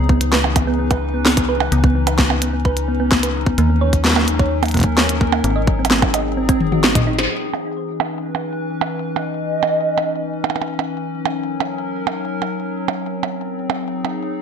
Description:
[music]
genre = IDM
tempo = 129 BPM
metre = 4/4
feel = straight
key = C# dorian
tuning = A4 = 439 Hz
[part]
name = warbly tape-like pad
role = sustained chords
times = 0.0-14.4 s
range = E3 to B4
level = -24 LUFS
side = left 2 dB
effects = chorus, built-in reverb
[part]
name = thumb-piano-like synth pluck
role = arpeggios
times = 0.0-7.3 s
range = A#3 to D#5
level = -22 LUFS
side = right 2 dB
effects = chorus, digital delay
[part]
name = metallic FM bass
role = bass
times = 0.0-7.3 s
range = G#1 to D#2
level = -20 LUFS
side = equal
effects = none
[part]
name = electronic kick drum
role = drums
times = 0.1-7.0 s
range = none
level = -17 LUFS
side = equal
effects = none
[part]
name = glitchy drum kit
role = drums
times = 0.2-14.1 s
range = hi-hat, percussion blips, snare drum, toms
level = -19 LUFS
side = right 2 dB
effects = low-pass filter on hats, low-pass filter on snare, low-pass filter on perc, low-pass filter on toms, low-pass filter on room, gated reverb
[part]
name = warbly nostalgic lead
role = melody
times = 9.2-10.7 s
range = D#5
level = -20 LUFS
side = right 1 dB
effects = chorus, cassette tape, ping-pong delay
[sound]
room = moderate plate reverb, RT60 0.9 s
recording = bright 1980s-style digital production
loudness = -16 LUFS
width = side -7 dB against mid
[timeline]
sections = 0.0-7.3 A section; 7.3-14.4 B section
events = drum fill 6.6-7.3; band accent 7.2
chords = 0.0 C#m9; 3.6 D#m7; 5.4 G#7; 7.3 C#m9; 11.0 D#m7; 12.9 G#7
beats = 0.33 0.79 1.25 | 1.72 2.19 2.65 3.12 | 3.58 4.05 4.51 4.98 | 5.44 5.91 6.37 6.84 | 7.30 7.77 8.23 8.70 | 9.16 9.63 10.09 10.56 | 11.02 11.49 11.95 12.42 | 12.88 13.35 13.81 14.28

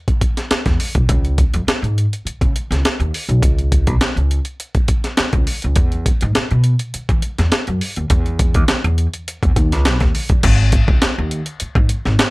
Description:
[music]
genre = funk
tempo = 103 BPM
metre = 4/4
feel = straight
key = unclear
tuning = A4 = 440 Hz
[part]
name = breakbeat sampler-style drum kit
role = drums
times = 0.1-12.3 s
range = crash cymbal, hi-hat, kick drum, snare drum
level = -16 LUFS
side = equal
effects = none
[part]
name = upright bass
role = bass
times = 0.5-12.2 s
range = G#1 to E3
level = -17 LUFS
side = equal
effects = none
[sound]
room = little or no reverb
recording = none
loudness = -14 LUFS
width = side -23 dB against mid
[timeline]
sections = 0.0-10.4 A section; 10.4-12.3 B section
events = none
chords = none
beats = 0.51 | 1.09 1.67 2.26 2.84 | 3.43 4.01 4.60 5.18 | 5.76 6.35 6.93 7.52 | 8.10 8.69 9.27 9.85 | 10.44 11.02 11.60 12.18

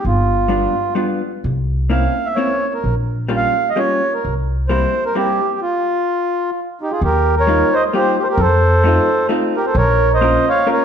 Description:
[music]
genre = musette waltz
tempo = 130 BPM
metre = 3/4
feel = straight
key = unclear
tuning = A4 = 440 Hz
[part]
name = mellow accordion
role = melody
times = 0.0-10.8 s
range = Eb4 to F5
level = -16 LUFS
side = right 1 dB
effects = slapback echo
[part]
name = upright bass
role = bass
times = 0.0-4.8, 7.0-10.3 s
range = G1 to F2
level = -18 LUFS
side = equal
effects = none
[part]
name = vintage hollow-body jazz guitar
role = accompaniment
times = 0.5-10.8 s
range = G3 to Bb4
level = -21 LUFS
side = left 2 dB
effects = none
[sound]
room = moderate recital hall reverb, RT60 1.3 s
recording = dark, warm production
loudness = -14 LUFS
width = side -8 dB against mid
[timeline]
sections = 0.0-7.0 A section; 7.0-10.8 B section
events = stop 5.6-7.0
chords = 0.0 G7; 1.4 C7b9; 2.8 Gm7b5/Bb; 4.2 C7; 5.6 N.C.; 7.0 Ebadd9; 8.4 F7; 9.8 Bbm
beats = | 0.04 0.50 0.97 | 1.44 1.92 2.38 | 2.85 3.31 3.77 | 4.23 4.69 5.14 | 5.60 6.07 6.54 | 7.01 7.47 7.93 | 8.38 8.84 9.29 | 9.75 10.21 10.68

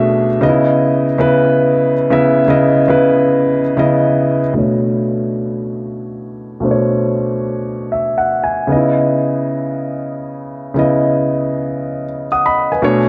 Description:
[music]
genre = amapiano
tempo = 116 BPM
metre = 4/4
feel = swing 55% on 16ths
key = unclear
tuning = A4 = 440 Hz
[part]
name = dark grand piano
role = solo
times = 0.0-13.1 s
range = B2 to D#6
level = -15 LUFS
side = equal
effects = low-pass filter, dub echo
[sound]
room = moderate spring reverb, RT60 1.7 s, studio reverb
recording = echo-heavy mix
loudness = -15 LUFS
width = mono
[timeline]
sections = 0.0-4.6 A section; 4.6-12.8 B section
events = drop 0.0-4.6; filter sweep on grand piano 4.6-12.8; grand piano fill 7.7-8.7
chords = 0.4 C#m9; 4.6 Bm9; 8.7 C#m9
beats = | 0.41 0.93 1.45 1.96 | 2.48 3.00 3.52 4.03 | 4.55 5.07 5.58 6.10 | 6.62 7.14 7.65 8.17 | 8.69 9.21 9.72 10.24 | 10.76 11.28 11.79 12.31 | 12.83

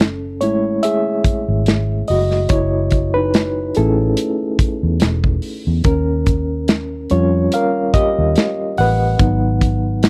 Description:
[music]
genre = lush 1970s-style soul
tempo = 72 BPM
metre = 4/4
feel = swing 54% on 16ths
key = F# dorian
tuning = A4 = 439 Hz
[part]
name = reed electric piano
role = accompaniment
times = 0.0-10.1 s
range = F#3 to F#5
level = -20 LUFS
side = equal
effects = fast tremolo
[part]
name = vintage muted fingered electric bass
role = bass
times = 0.0-10.1 s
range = E1 to E#2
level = -21 LUFS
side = equal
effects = none
[part]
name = modern studio drum kit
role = drums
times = 0.0-10.1 s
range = hi-hat, kick drum, snare drum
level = -19 LUFS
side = equal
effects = none
[sound]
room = little or no reverb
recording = dry, close 1970s-style studio recording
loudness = -17 LUFS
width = mono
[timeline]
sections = 0.0-10.1 A section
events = reed electric piano solo 0.0-10.1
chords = 0.0 F#m9; 5.9 D#7; 9.2 G#m7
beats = 0.83 1.67 | 2.50 3.34 4.18 5.02 | 5.85 6.69 7.53 8.36 | 9.20 10.03

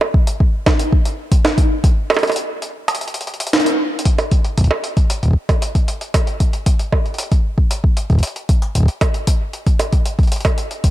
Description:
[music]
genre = IDM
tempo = 115 BPM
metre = 4/4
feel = straight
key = none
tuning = none
[part]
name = jungle sampler-style drum kit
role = drums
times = 0.0-10.9 s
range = bongos, hi-hat, snare drum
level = -20 LUFS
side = right 2 dB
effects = overdrive
[part]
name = electronic kick drum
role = drums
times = 0.1-10.9 s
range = none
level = -14 LUFS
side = equal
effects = none
[sound]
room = light reverb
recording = dark, warm production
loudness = -14 LUFS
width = side -14 dB against mid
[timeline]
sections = 0.0-4.1 A section; 4.1-10.9 B section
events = break 2.0-4.1; band accent 3.5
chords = none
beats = 0.40 0.93 1.45 | 1.97 2.49 3.01 3.53 | 4.06 4.58 5.10 5.62 | 6.14 6.67 7.19 7.71 | 8.23 8.75 9.27 9.79 | 10.32 10.84

